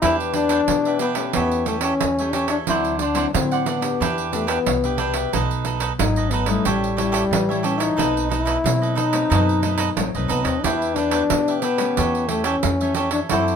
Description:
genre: samba and choro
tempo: 90 BPM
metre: 4/4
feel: straight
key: E minor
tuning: A4 = 440 Hz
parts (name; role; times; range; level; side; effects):
- mellow trombone; melody; 0.0-13.6 s; G3 to E4; -22 LUFS; left 3 dB; none
- cavaquinho; accompaniment; 0.0-13.6 s; D4 to F#5; -25 LUFS; right 8 dB; none
- nylon-string guitar; accompaniment; 0.0-13.6 s; F#2 to A4; -27 LUFS; left 8 dB; none
- upright bass; bass; 0.0-13.6 s; G#1 to E3; -26 LUFS; right 1 dB; none
- pandeiro; percussion; 0.0-13.6 s; none; -26 LUFS; right 7 dB; none
room: light reverb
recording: minimal, uncompressed stereo recording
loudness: -18 LUFS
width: side -7 dB against mid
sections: 0.0-13.6 A section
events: none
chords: 0.0 Em7; 1.3 A7/E; 2.7 D9; 4.0 Em7; 5.3 B7; 6.7 A7; 8.0 B7b9; 10.6 Em7; 12.0 A7/E

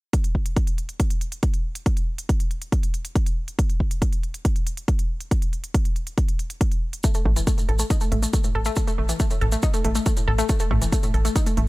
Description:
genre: uplifting trance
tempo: 139 BPM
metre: 4/4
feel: straight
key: unclear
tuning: A4 = 443 Hz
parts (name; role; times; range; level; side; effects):
- electronic hi-hat; drums; 0.1-11.7 s; none; -37 LUFS; right 2 dB; none
- electronic kick drum; drums; 0.1-11.4 s; none; -22 LUFS; equal; none
- wide unison pluck; arpeggios; 7.0-11.7 s; A2 to A4; -27 LUFS; left 1 dB; auto-pan, sidechain pumping, tape echo
- maracas; percussion; 7.0-11.6 s; none; -32 LUFS; right 2 dB; none
- plucky analog bass; bass; 7.3-11.7 s; A1; -22 LUFS; equal; sidechain pumping
room: little or no reverb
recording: none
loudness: -21 LUFS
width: side -20 dB against mid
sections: 0.1-11.7 A section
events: none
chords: none

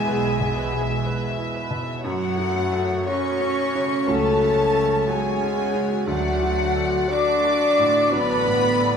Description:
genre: cinematic, emotional film score for orchestra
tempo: 60 BPM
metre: 4/4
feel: rubato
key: F# minor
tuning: A4 = 439 Hz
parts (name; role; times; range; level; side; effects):
- warm studio violin section; melody; 0.0-9.0 s; C#5 to E5; -32 LUFS; left 3 dB; none
- clear clarinet; second line; 0.0-8.9 s; A3 to F#4; -34 LUFS; left 1 dB; none
- mellow hollow flute section; second line; 0.0-9.0 s; F#5 to D6; -28 LUFS; left 2 dB; none
- warm studio violin section; second line; 0.0-9.0 s; F#5 to D6; -31 LUFS; equal; none
- felt-muted upright piano; accompaniment; 0.0-9.0 s; D2 to B4; -29 LUFS; equal; none
- warm studio viola section; accompaniment; 0.0-9.0 s; F#3 to E5; -34 LUFS; right 2 dB; none
- mellow French horn section; sustained chords; 0.0-9.0 s; F#4 to D5; -23 LUFS; left 2 dB; none
- warm studio cello section; bass; 0.0-9.0 s; F#3 to D4; -27 LUFS; right 4 dB; none
- dark symphonic double bass section; bass; 0.1-9.0 s; A1 to F#2; -29 LUFS; right 3 dB; none
room: wet scoring stage reverb, RT60 2.0 s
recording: none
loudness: -19 LUFS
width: side -7 dB against mid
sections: 0.0-9.0 A section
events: none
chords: 0.0 E; 2.0 F#m; 6.1 D

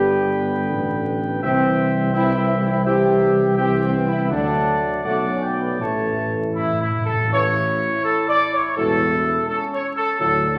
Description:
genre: classical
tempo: 83 BPM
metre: 4/4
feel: straight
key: A major from 7.3 s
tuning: A4 = 440 Hz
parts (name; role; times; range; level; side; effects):
- dark trumpet section; melody; 0.0-10.6 s; E4 to A5; -24 LUFS; equal; none
- dark trombone section; sustained chords; 0.0-10.4 s; A2 to C4; -28 LUFS; equal; none
- mellow French horn section; sustained chords; 0.0-10.6 s; A3 to G4; -26 LUFS; equal; none
- dark tuba; bass; 0.0-10.6 s; E1 to D2; -27 LUFS; equal; none
- timpani; percussion; 5.8-8.4 s; A2; -31 LUFS; equal; none
room: wet recital hall reverb, RT60 1.5 s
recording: vinyl crackle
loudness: -20 LUFS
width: mono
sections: 0.0-7.3 A section; 7.3-10.6 B section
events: timpani fill 5.8-7.3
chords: 0.0 G; 1.4 C; 4.3 D; 5.8 A

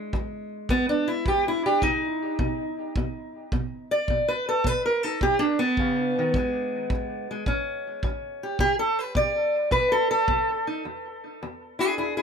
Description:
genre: acoustic country blues, solo or duo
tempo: 106 BPM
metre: 4/4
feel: swing 68% on 8ths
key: unclear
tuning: A4 = 444 Hz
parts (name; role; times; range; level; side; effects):
- fingerpicked steel-string acoustic guitar; melody; 0.0-12.2 s; E2 to D5; -24 LUFS; equal; analog delay
- kick drum; drums; 0.1-10.5 s; none; -29 LUFS; right 1 dB; none
room: light reverb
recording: none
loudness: -23 LUFS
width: side -6 dB against mid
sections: 0.0-10.8 A section; 10.8-12.2 B section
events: steel-string acoustic guitar solo 0.0-10.8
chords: 0.0 E; 1.8 B; 6.3 E; 7.5 A; 8.6 B7(no3); 10.8 E7

